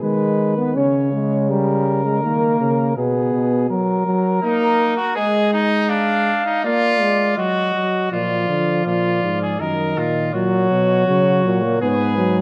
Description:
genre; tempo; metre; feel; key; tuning
classical, imitative canzona for brass ensemble; 81 BPM; 3/4; straight; G# minor; A4 = 441 Hz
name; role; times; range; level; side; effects
dark cornet; melody; 0.0-12.4 s; G#4 to E#5; -25 LUFS; equal; none
mellow trombone; accompaniment; 0.0-12.4 s; D#3 to C#4; -22 LUFS; equal; none
warm bass trombone; bass; 0.0-3.7, 8.1-12.4 s; F#2 to D#3; -25 LUFS; equal; none
bright trumpet; second line; 4.4-12.4 s; D4 to A#4; -24 LUFS; equal; none
room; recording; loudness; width
moderate concert hall reverb, RT60 2.0 s; close, detailed microphones; -18 LUFS; mono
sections
0.0-8.1 A section; 8.1-12.4 B section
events
none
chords
0.0 G#m; 0.8 C#5; 1.5 D#; 3.0 G#m/B; 3.7 D#m/F#; 5.2 G#5; 5.9 A#; 7.4 D#m/F#; 8.1 A#; 9.6 D#m/F#; 10.3 F#/A#; 11.8 G#m

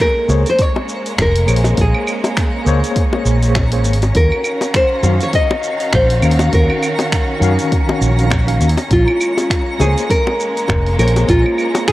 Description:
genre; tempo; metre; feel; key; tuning
sunset chillout; 101 BPM; 4/4; swing 58% on 16ths; Bb minor; A4 = 440 Hz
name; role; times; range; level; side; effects
nylon-string guitar; melody; 0.0-11.9 s; F4 to Eb5; -17 LUFS; equal; digital delay
bright tine electric piano; accompaniment; 0.0-11.9 s; Eb3 to F5; -22 LUFS; moving between left 4 dB and right 3 dB; medium stereo tremolo, auto-pan, digital delay
warm symphonic string section; sustained chords; 0.0-11.9 s; Eb3 to F5; -24 LUFS; equal; none
deep house drum kit; drums; 0.0-11.9 s; claves, finger snaps, hi-hat, shaker; -24 LUFS; right 1 dB; none
electronic kick drum; drums; 0.0-11.9 s; none; -18 LUFS; equal; none
twinkling granular texture; texture; 0.1-11.9 s; Bb5 to Db7; -29 LUFS; equal; built-in reverb
fretless electric bass; bass; 0.3-11.4 s; F1 to Gb2; -14 LUFS; equal; none
bongos; percussion; 0.3-11.8 s; none; -22 LUFS; left 2 dB; none
room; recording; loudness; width
light reverb; worn, warbling old tape, cassette tape, warbly pitch drift; -12 LUFS; side -16 dB against mid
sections
0.0-11.9 A section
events
none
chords
0.0 Bbm9; 4.2 Ebm9; 8.9 Bbm9

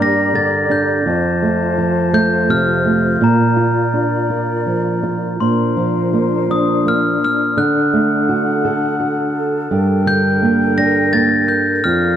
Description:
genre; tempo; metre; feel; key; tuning
children's music, lullaby; 84 BPM; 3/4; straight; Bb major; A4 = 439 Hz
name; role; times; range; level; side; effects
glockenspiel with rubber mallets; melody; 0.0-12.2 s; Bb5 to Bb6; -19 LUFS; left 1 dB; none
flamenco guitar; accompaniment; 0.0-12.2 s; F2 to A4; -16 LUFS; right 3 dB; none
breathy mellow flute section; sustained chords; 0.0-12.2 s; D4 to Bb5; -21 LUFS; left 5 dB; none
room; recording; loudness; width
moderate recital hall reverb, RT60 1.6 s; dark, warm production; -13 LUFS; side -10 dB against mid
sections
0.0-5.4 A section; 5.4-12.2 B section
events
none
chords
0.0 Gm; 1.1 F; 3.2 Bb; 5.4 Bbadd9; 7.6 D; 9.7 Gmadd9

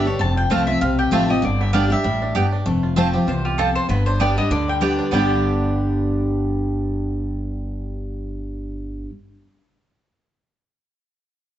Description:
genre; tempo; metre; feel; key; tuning
bluegrass; 195 BPM; 4/4; swing 55% on 8ths; G mixolydian; A4 = 440 Hz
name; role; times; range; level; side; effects
bluegrass banjo; melody; 0.0-9.1 s; D3 to G4; -30 LUFS; right 4 dB; none
mandolin; melody; 0.0-9.1 s; F4 to A5; -25 LUFS; left 2 dB; none
picked steel-string acoustic guitar; accompaniment; 0.0-9.1 s; E2 to G4; -22 LUFS; left 1 dB; none
upright bass; bass; 0.0-9.0 s; F1 to D2; -24 LUFS; equal; none
mandolin; stabs; 0.5-9.1 s; B3 to A5; -26 LUFS; right 4 dB; none
room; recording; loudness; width
moderate studio reverb, RT60 1.0 s; heard from further back in the room, nothing above 8.0 kHz; -18 LUFS; side -11 dB against mid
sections
0.0-2.7 A section; 2.7-5.1 B section; 5.1-7.6 C section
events
none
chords
0.2 F; 1.4 G; 2.7 F; 3.9 G

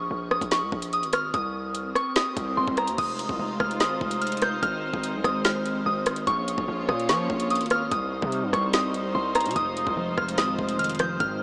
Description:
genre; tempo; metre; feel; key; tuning
hip hop, drill; 146 BPM; 4/4; half-time; F minor; A4 = 440 Hz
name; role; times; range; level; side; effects
soft synth bell; melody; 0.0-11.4 s; Bb5 to G6; -29 LUFS; equal; chorus, diffuse ambient delay
distorted 808-style bass; bass; 0.0-11.4 s; F1 to F3; -35 LUFS; equal; distortion
drill drum kit; drums; 0.3-11.3 s; crash cymbal, hi-hat, kick drum, rim click, snare drum; -32 LUFS; equal; none
swell; sound effects; 1.8-3.0 s; none; -40 LUFS; equal; none
warm studio string section; sustained chords; 3.0-11.4 s; G3 to Db5; -32 LUFS; equal; none
mellow tine electric piano; accompaniment; 9.6-11.4 s; F2 to F3; -36 LUFS; equal; none
room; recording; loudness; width
wet huge ambient reverb, RT60 7.7 s; dreamy mix soaked in reverb, small speaker sound; -26 LUFS; mono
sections
0.0-3.0 A section; 3.0-11.4 B section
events
swell 1.8-3.0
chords
0.0 Bbm; 1.3 Cm; 3.0 Fm7; 4.6 Ab; 6.3 Bbm; 7.9 Cm; 9.6 Fm7

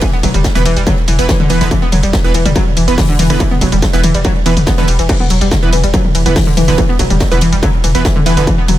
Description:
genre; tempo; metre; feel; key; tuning
driving peak-time techno; 142 BPM; 4/4; straight; E minor; A4 = 442 Hz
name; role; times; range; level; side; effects
analog pluck; riff; 0.0-8.7 s; D3 to B3; -16 LUFS; left 1 dB; chorus, sidechain pumping, tape echo
supersaw stab; stabs; 0.0-8.4 s; E3 to B4; -19 LUFS; right 4 dB; sidechain pumping, digital delay
electronic kick drum; drums; 0.0-8.6 s; none; -14 LUFS; equal; distortion
natural country drum kit; drums; 0.0-8.8 s; hi-hat, ride cymbal, snare drum; -27 LUFS; right 1 dB; high-pass filter on cymbals, high-pass filter on hats, high-pass filter on snare, high-pass filter on room
techno drum kit; drums; 0.0-8.8 s; crash cymbal, hi-hat, ride cymbal, toms; -18 LUFS; left 2 dB; sidechain pumping on hats, sidechain pumping on cymbals, sidechain pumping on toms
saturated sub bass; bass; 0.2-8.8 s; E1; -16 LUFS; equal; overdrive, sidechain pumping, low-pass filter
room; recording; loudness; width
little or no reverb; none; -9 LUFS; side -13 dB against mid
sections
0.0-8.8 A section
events
none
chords
0.0 E5

